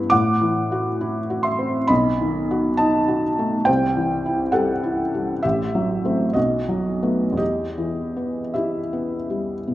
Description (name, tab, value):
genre	classical, romantic nocturne for solo piano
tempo	52-71 BPM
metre	4/4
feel	rubato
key	E minor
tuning	A4 = 442 Hz
part	felt-muted upright piano	solo	0.0-9.7 s	A1 to D6	-19 LUFS	equal	none
room	wet recital hall reverb, RT60 1.6 s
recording	dark, warm production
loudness	-19 LUFS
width	side -15 dB against mid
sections	0.0-9.7 A section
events	none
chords	0.1 F#m7b5/A; 1.9 B7; 3.7 C; 5.4 F#dim/A; 6.4 B7; 7.4 Em